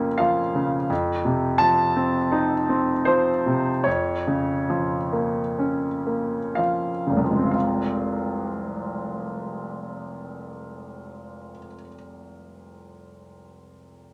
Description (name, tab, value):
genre	classical, romantic nocturne for solo piano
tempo	29-44 BPM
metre	4/4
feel	rubato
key	F minor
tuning	A4 = 440 Hz
part	clear baby grand piano	solo	0.0-14.1 s	F1 to A5	-24 LUFS	equal	none
room	moderate studio ambience, RT60 0.5 s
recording	none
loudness	-24 LUFS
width	mono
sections	0.0-7.5 A section; 7.5-14.1 B section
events	slowing down 0.0-7.5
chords	0.0 Bbm/F; 0.9 F7; 3.9 Bbm/F; 7.5 Fm